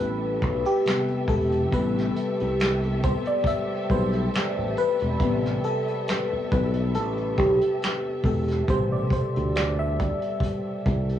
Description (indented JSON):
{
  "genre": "R&B, neo-soul",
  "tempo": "69 BPM",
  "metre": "4/4",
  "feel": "swing 53% on 16ths",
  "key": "A minor",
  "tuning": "A4 = 440 Hz",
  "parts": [
    { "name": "FM electric piano", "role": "accompaniment", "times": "0.0-11.2 s", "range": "B2 to E5", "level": "-25 LUFS", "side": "left 1 dB", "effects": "chorus, phaser, cassette tape" },
    { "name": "warm studio string section", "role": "sustained chords", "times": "0.0-11.2 s", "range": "A3 to E5", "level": "-35 LUFS", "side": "right 1 dB", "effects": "cassette tape" },
    { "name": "sustaining fretless electric bass", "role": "bass", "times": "0.0-11.2 s", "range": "E1 to D2", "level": "-26 LUFS", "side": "equal", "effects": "none" },
    { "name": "vintage brush drum kit", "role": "drums", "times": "0.4-11.2 s", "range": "finger snaps, hi-hat, kick drum, snare drum", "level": "-28 LUFS", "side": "equal", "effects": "none" }
  ],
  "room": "light reverb",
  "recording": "home recording on cassette, small room ambience",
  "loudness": "-22 LUFS",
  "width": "side -10 dB against mid",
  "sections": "0.0-11.2 A section",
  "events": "FM electric piano solo 0.0-11.2",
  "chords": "0.0 Am9"
}